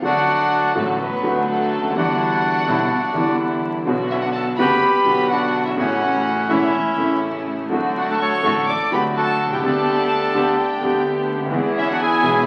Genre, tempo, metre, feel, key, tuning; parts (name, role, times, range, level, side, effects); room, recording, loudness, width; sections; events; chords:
tango; 126 BPM; 4/4; rubato; D major; A4 = 440 Hz
bandoneon; melody; 0.0-12.5 s; F#3 to D5; -22 LUFS; equal
warm studio violin section; second line; 0.0-12.5 s; A4 to D6; -29 LUFS; equal
warm concert grand piano; accompaniment; 0.0-12.4 s; E1 to G#4; -24 LUFS; equal
warm chamber string section; stabs; 0.0-12.4 s; G3 to G#4; -30 LUFS; equal
upright bass; bass; 0.0-12.4 s; E1 to E2; -39 LUFS; equal
wet large studio reverb, RT60 1.4 s; very old 78 rpm record, vinyl crackle; -19 LUFS; mono
0.0-12.5 A section
0.0 D; 2.0 Em7; 3.9 Bm; 5.8 A; 7.7 D; 9.6 G/D; 11.5 E